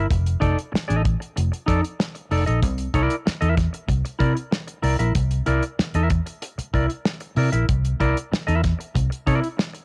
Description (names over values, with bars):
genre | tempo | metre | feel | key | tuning
funk | 95 BPM | 4/4 | straight | C mixolydian | A4 = 439 Hz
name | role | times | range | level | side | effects
clean electric guitar | accompaniment | 0.0-9.8 s | Eb4 to E5 | -28 LUFS | equal | none
vintage muted fingered electric bass | bass | 0.0-9.4 s | F1 to C3 | -24 LUFS | equal | none
damped 70s drum kit | drums | 0.1-9.8 s | hi-hat, kick drum, snare drum | -27 LUFS | equal | cassette tape
room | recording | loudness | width
studio reverb | home recording on cassette | -23 LUFS | mono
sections
0.0-9.8 A section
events
none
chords
0.1 F6; 2.6 C9